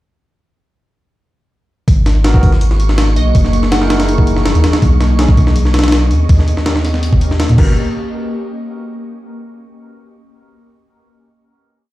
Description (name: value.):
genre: drum and bass, jungle.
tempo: 163 BPM.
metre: 4/4.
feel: straight.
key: G# minor.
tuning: A4 = 441 Hz.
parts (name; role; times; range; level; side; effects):
ethereal airy pad; sustained chords; 2.6-7.8 s; E3 to D#5; -22 LUFS; left 1 dB; ensemble chorus, built-in reverb.
soft dub sub bass; bass; 1.9-7.8 s; F#1 to A#2; -13 LUFS; equal; tube saturation.
breakbeat sampler-style drum kit; drums; 1.9-7.7 s; crash cymbal, hi-hat, kick drum, snare drum; -13 LUFS; equal; studio reverb.
wind-like tuned noise texture; texture; 2.5-7.8 s; C#6; -30 LUFS; right 7 dB; built-in reverb.
bright tine electric piano; stabs; 2.2-7.7 s; B3 to A#4; -23 LUFS; right 1 dB; dub echo.
glassy wavetable pluck; melody; 3.2-4.2 s; D#5 to F#5; -26 LUFS; right 2 dB; chorus, vintage 12-bit sampler grit, dub echo.
room: little or no reverb.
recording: played on a big sound system in a bare room, large studio reverb.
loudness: -10 LUFS.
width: side -16 dB against mid.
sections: 1.9-7.8 drop; 7.8-9.2 final hit.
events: drop 1.9-7.8.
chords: 1.9 G#m9; 3.4 F#13; 4.8 B69; 6.3 D#7; 7.6 G#m9; 7.8 N.C..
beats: | 1.88 2.25 2.61 2.98 | 3.35 3.72 4.09 4.45 | 4.82 5.19 5.56 5.93 | 6.29 6.66 7.03 7.40 | 7.77.